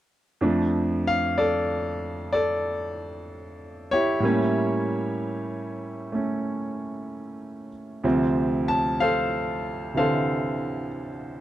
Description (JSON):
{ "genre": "solo jazz", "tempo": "63 BPM", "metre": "4/4", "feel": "swing 67% on 8ths", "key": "F major", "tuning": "A4 = 439 Hz", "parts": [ { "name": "clear grand piano", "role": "solo", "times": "0.4-11.4 s", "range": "D2 to A5", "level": "-24 LUFS", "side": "equal", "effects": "none" } ], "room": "studio ambience", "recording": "dry, close 1970s-style studio recording", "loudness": "-23 LUFS", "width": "side -13 dB against mid", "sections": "0.4-11.4 A section", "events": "none", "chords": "0.4 F6; 4.2 A7b9; 8.0 Dm9" }